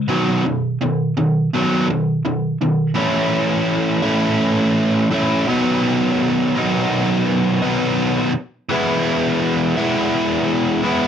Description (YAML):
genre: rock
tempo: 84 BPM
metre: 4/4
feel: straight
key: unclear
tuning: A4 = 440 Hz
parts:
  - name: biting overdriven guitar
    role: solo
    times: 0.0-11.1 s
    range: A2 to E4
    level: -16 LUFS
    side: equal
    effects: none
room: light reverb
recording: dry, close 1970s-style studio recording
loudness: -16 LUFS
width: side -8 dB against mid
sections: 0.0-3.0 A section; 3.0-11.1 B section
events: none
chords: 0.1 B; 3.0 A; 5.5 B; 8.7 E